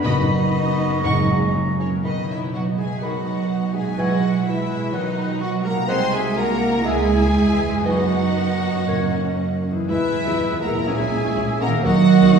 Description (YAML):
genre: classical, dramatic, fast romantic movement for symphony orchestra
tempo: 122 BPM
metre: 4/4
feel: rubato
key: B major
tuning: A4 = 440 Hz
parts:
  - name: rich studio violin section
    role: melody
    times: 0.0-12.4 s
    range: C#5 to B#5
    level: -30 LUFS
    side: left 2 dB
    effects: none
  - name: bright flute section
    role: second line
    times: 0.0-12.4 s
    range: A#4 to G#5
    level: -30 LUFS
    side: left 1 dB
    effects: none
  - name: clear oboe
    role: second line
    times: 0.0-12.4 s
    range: C#5 to B5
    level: -32 LUFS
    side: equal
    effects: none
  - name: mellow clarinet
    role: second line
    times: 0.0-12.4 s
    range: C#4 to B#4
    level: -29 LUFS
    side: right 1 dB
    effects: none
  - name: warm symphonic violin section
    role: second line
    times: 0.0-12.4 s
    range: C#4 to C#6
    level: -30 LUFS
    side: left 2 dB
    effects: none
  - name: mellow bassoon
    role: accompaniment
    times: 0.0-12.4 s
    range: C#3 to C#4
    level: -30 LUFS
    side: left 1 dB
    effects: none
  - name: warm symphonic viola section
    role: accompaniment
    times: 0.0-12.4 s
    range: E3 to F#4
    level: -29 LUFS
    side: right 2 dB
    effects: none
  - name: mellow French horn section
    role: sustained chords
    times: 0.0-12.4 s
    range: C#3 to D#4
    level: -25 LUFS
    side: right 4 dB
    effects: none
  - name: concert harp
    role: arpeggios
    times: 0.0-12.4 s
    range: E2 to D#5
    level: -27 LUFS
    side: left 1 dB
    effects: none
  - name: dark symphonic cello section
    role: bass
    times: 0.0-12.4 s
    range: C#3 to D#4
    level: -24 LUFS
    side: right 5 dB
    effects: none
  - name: warm symphonic double bass section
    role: bass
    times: 0.0-12.4 s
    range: F#1 to F#2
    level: -27 LUFS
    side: right 2 dB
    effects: none
  - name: timpani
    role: percussion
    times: 0.0-4.7, 8.9-9.6 s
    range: F#2 to B2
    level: -26 LUFS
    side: left 2 dB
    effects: none
room: wet scoring stage reverb, RT60 1.9 s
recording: heard from further back in the room, studio reverb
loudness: -18 LUFS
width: side -6 dB against mid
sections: 0.0-2.1 A section; 2.1-12.4 B section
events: none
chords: 0.0 B/F#; 1.1 F#; 2.1 B; 4.0 E/B; 4.9 B; 5.9 G#7/B#; 6.9 C#m; 7.9 B/F#; 8.9 F#; 9.9 E; 10.9 A#m7b5; 11.8 D#m